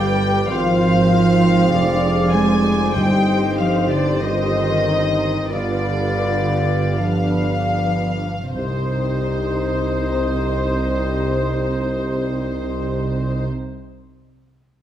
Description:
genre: classical, slow romantic movement for symphony orchestra.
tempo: 37-51 BPM.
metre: 4/4.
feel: rubato.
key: C minor.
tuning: A4 = 440 Hz.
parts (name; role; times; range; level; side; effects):
clear studio violin section; melody; 0.0-13.5 s; C5 to Ab5; -29 LUFS; left 5 dB; none.
concert flute; second line; 0.0-13.4 s; C5 to Ab5; -28 LUFS; left 4 dB; none.
mellow clarinet; second line; 0.0-13.5 s; C4 to G4; -30 LUFS; left 2 dB; none.
warm symphonic violin section; second line; 0.0-13.5 s; C5 to Ab5; -30 LUFS; left 3 dB; none.
dark studio viola section; accompaniment; 0.0-13.5 s; D4 to D5; -27 LUFS; equal; none.
mellow French horn section; sustained chords; 0.0-13.5 s; C4 to D5; -28 LUFS; left 4 dB; none.
warm trombone section; sustained chords; 0.0-13.5 s; G2 to C4; -28 LUFS; right 1 dB; none.
mellow trumpet section; stabs; 0.0-13.5 s; C5 to F5; -29 LUFS; right 2 dB; none.
dark studio cello section; bass; 0.0-13.5 s; C3 to Ab3; -22 LUFS; right 2 dB; none.
dark studio double bass section; bass; 0.0-13.5 s; F1 to C2; -26 LUFS; right 3 dB; none.
warm tuba; bass; 0.0-13.5 s; F1 to C2; -28 LUFS; right 2 dB; none.
timpani; percussion; 3.0-13.5 s; G2 to C3; -30 LUFS; left 1 dB; none.
room: moderate recital hall reverb, RT60 1.4 s.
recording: none.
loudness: -17 LUFS.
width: side -10 dB against mid.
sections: 0.0-8.5 A section; 8.5-14.4 B section.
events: slowing down 0.0-8.5.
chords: 0.5 Fm/Ab; 3.0 Cm/G; 5.5 G7; 8.5 Cm.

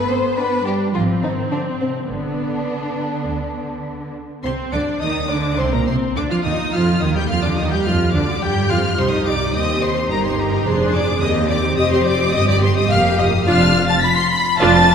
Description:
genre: quick classical-period movement for string orchestra.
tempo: 106 BPM.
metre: 4/4.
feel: straight.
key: C minor.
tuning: A4 = 440 Hz.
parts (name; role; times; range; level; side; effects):
warm symphonic violin section; second line; 0.0-14.9 s; C4 to C6; -23 LUFS; left 2 dB; none.
rich symphonic viola section; accompaniment; 0.0-14.9 s; Bb3 to Ab4; -22 LUFS; equal; none.
warm chamber double bass section; bass; 0.0-14.9 s; F1 to G2; -23 LUFS; right 2 dB; none.
warm symphonic cello section; bass; 0.1-14.9 s; C2 to C4; -22 LUFS; right 1 dB; none.
warm symphonic violin section; melody; 0.4-14.9 s; G5 to C7; -22 LUFS; left 2 dB; none.
room: wet concert hall reverb, RT60 2.0 s.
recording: minimal, uncompressed stereo recording.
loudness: -16 LUFS.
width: side -7 dB against mid.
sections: 0.0-4.4 A section; 4.4-14.9 B section.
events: none.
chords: 0.0 G; 0.9 Fm/Ab; 2.1 G; 4.4 Cm; 6.7 G5; 9.0 Cm; 13.5 Dm/F.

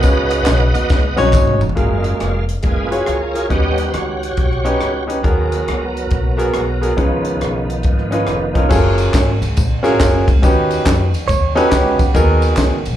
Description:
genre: uptempo gospel.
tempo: 139 BPM.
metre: 4/4.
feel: swing 64% on 8ths.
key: F# major.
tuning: A4 = 436 Hz.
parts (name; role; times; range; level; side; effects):
clear grand piano; accompaniment; 0.0-12.8 s; C#3 to C#5; -18 LUFS; equal; slapback echo.
bright tonewheel organ; sustained chords; 0.0-8.7 s; D#3 to F#5; -21 LUFS; right 3 dB; fast rotary speaker, overdrive, chorus vibrato.
upright bass; bass; 0.0-13.0 s; E#1 to G#2; -19 LUFS; left 1 dB; none.
crisp fusion drum kit; drums; 0.0-12.9 s; crash cymbal, hi-hat, kick drum, ride cymbal, rim click, snare drum, toms; -18 LUFS; equal; none.
tambourine and handclaps; percussion; 0.0-1.7, 8.7-12.9 s; none; -29 LUFS; equal; none.
direct-recorded clean electric guitar; second line; 11.3-12.1 s; B3 to C#5; -20 LUFS; right 7 dB; slapback echo.
room: light reverb.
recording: live gig heard through the venue's PA, club reverb.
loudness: -13 LUFS.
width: side -11 dB against mid.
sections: 0.0-1.8 A section; 1.8-8.7 B section; 8.7-13.0 A section.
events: tonewheel organ solo 0.0-1.8, 1.8-8.7; drum fill 0.9-1.8.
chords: 0.0 C#9sus4; 1.8 F#maj9; 3.5 D#7alt; 5.2 G#m9; 7.0 C#9; 8.7 F#maj9; 10.4 D#7alt; 12.2 G#m9.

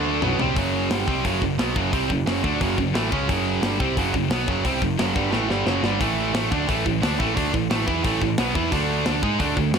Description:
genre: heavy metal.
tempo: 177 BPM.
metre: 4/4.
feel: straight.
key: F# minor.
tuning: A4 = 440 Hz.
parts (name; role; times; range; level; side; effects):
high-gain distorted guitar; riff; 0.0-9.8 s; F#2 to G#4; -24 LUFS; right 12 dB; distortion.
scooped high-gain guitar; riff; 0.0-9.8 s; F#2 to G#4; -26 LUFS; left 15 dB; distortion.
hollow-body short-scale picked electric bass; bass; 0.0-9.8 s; F#1 to G#2; -28 LUFS; left 1 dB; none.
tight metal drum kit; drums; 0.2-9.8 s; hi-hat, kick drum, snare drum, toms; -26 LUFS; left 1 dB; none.
room: small room reverb.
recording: none.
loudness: -20 LUFS.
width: side -6 dB against mid.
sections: 0.6-9.8 A section.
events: drum fill 0.0-0.6, 5.3-6.0.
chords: 0.2 B5; 0.6 F#m; 6.0 A5; 8.7 D5.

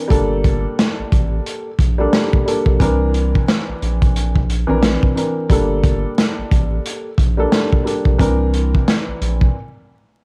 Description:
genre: hip hop, boom-bap hip-hop.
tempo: 89 BPM.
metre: 4/4.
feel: swing 59% on 16ths.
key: G dorian.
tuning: A4 = 440 Hz.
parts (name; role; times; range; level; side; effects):
dark concert grand piano; accompaniment; 0.0-9.6 s; E3 to Bb4; -22 LUFS; equal; cassette tape, high-pass filter, low-pass filter.
round analog bass; bass; 0.1-9.5 s; G1 to C2; -22 LUFS; equal; none.
crunchy breakbeat drum kit; drums; 0.1-9.5 s; hi-hat, kick drum, snare drum; -19 LUFS; equal; cassette tape.
room: small room reverb.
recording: home recording on cassette, vinyl crackle.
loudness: -17 LUFS.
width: mono.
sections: 0.0-10.2 A section.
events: break 9.5-10.2.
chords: 0.1 Gmadd9; 2.8 C9; 5.5 Gmadd9; 8.2 C9; 9.5 N.C..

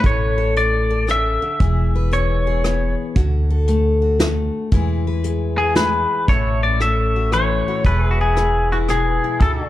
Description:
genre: honky-tonk and classic country.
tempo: 115 BPM.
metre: 3/4.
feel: swing 65% on 8ths.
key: A major.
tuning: A4 = 441 Hz.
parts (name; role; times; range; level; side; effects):
twangy electric guitar; melody; 0.0-2.9, 5.6-9.5 s; F#4 to E5; -20 LUFS; left 2 dB; spring reverb, plate reverb.
picked steel-string acoustic guitar; accompaniment; 0.0-9.7 s; A2 to B4; -23 LUFS; left 3 dB; none.
pedal steel guitar; sustained chords; 0.0, 6.3-9.7 s; D4 to E5; -30 LUFS; right 1 dB; none.
upright bass; bass; 0.0-9.7 s; E1 to E2; -20 LUFS; equal; none.
soft brush drum kit; drums; 0.0-9.6 s; hi-hat, kick drum, rim click, snare drum; -20 LUFS; equal; none.
room: light reverb.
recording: dark, warm production.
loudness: -16 LUFS.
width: side -14 dB against mid.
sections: 0.0-6.3 A section; 6.3-9.7 B section.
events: none.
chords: 0.0 A; 1.6 E; 3.2 D; 4.7 E; 6.3 A6; 7.8 E.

